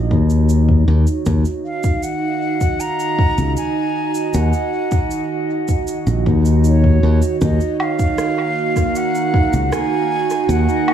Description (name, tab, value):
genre	ambient dub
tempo	78 BPM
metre	4/4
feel	straight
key	unclear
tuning	A4 = 439 Hz
part	warbly tape-like pad	sustained chords	0.0-10.9 s	Eb3 to Eb5	-21 LUFS	right 4 dB	chorus, built-in reverb
part	modern bright fingered electric bass	bass	0.0-10.7 s	Bb1 to Eb2	-14 LUFS	left 1 dB	none
part	electronic kick drum	drums	0.1-9.5 s	none	-18 LUFS	equal	studio reverb
part	electronic cabasa, woodblock and rim click	drums	0.3-10.9 s	none	-29 LUFS	right 2 dB	overdrive, studio reverb, dub echo
part	breathy concert flute	melody	1.7-10.9 s	Db5 to Bb5	-23 LUFS	equal	dub echo
part	backwards swelling texture	texture	7.7-10.9 s	Bb3 to Bb5	-27 LUFS	equal	built-in reverb
room	light reverb, digital ambience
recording	echo-heavy mix, small room ambience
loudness	-15 LUFS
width	side -9 dB against mid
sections	0.0-10.9 A section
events	none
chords	0.0 Gb6/Bb